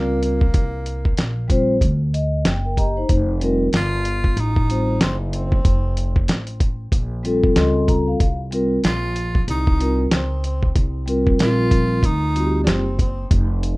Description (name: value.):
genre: hip hop, jazz-hop.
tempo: 94 BPM.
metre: 4/4.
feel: swing 60% on 16ths.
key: C dorian.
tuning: A4 = 441 Hz.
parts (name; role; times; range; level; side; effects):
breathy tenor saxophone; melody; 0.0-13.3 s; Bb3 to F4; -27 LUFS; equal; plate reverb, analog delay.
vibraphone with soft mallets; accompaniment; 0.0-12.9 s; G3 to C6; -21 LUFS; left 1 dB; plate reverb.
upright bass; bass; 0.0-13.8 s; F1 to D2; -22 LUFS; equal; none.
dusty soul sampler-style drum kit; drums; 0.2-13.8 s; hi-hat, kick drum, snare drum; -18 LUFS; equal; none.
room: light reverb.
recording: rough home demo mix.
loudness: -17 LUFS.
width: side -22 dB against mid.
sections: 0.0-13.8 A section.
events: vibraphone fill 1.8-3.1.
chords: 0.0 Cm9; 3.1 Fsus4; 8.2 Cm7.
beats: | 0.54 1.18 1.82 2.46 | 3.10 3.73 4.37 5.01 | 5.65 6.29 6.93 7.57 | 8.20 8.84 9.48 10.12 | 10.76 11.39 12.03 12.67 | 13.31.